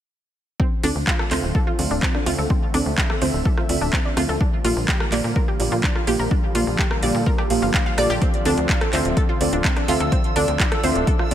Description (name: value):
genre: progressive house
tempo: 126 BPM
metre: 4/4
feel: straight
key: D minor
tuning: A4 = 440 Hz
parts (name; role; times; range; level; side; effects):
- supersaw pad; sustained chords; 0.6-11.3 s; D3 to E5; -28 LUFS; right 1 dB; sidechain pumping, low-pass filter
- analog pluck; arpeggios; 0.6-11.3 s; C4 to F5; -26 LUFS; equal; chorus, sidechain pumping, dub echo
- electronic kick drum; drums; 0.6-11.2 s; none; -21 LUFS; equal; overdrive
- deep mellow chord stab; stabs; 0.8-11.3 s; Bb3 to F5; -26 LUFS; right 2 dB; chorus, sidechain pumping, dub echo
- tight sequencer bass; bass; 0.8-11.3 s; D1 to Bb2; -25 LUFS; equal; sidechain pumping
- house drum kit; drums; 0.8-11.3 s; handclaps, hi-hat, rim click; -26 LUFS; right 1 dB; none
- backwards swelling texture; texture; 9.8-11.3 s; E6; -34 LUFS; right 3 dB; built-in reverb, sidechain pumping
room: digital ambience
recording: none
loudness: -18 LUFS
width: side -10 dB against mid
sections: 0.6-11.3 A section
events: filter sweep on synth stab 0.6-11.3; filter sweep on supersaw synth 0.6-11.3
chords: 0.6 Dm7; 4.4 Bb6; 8.2 Dm7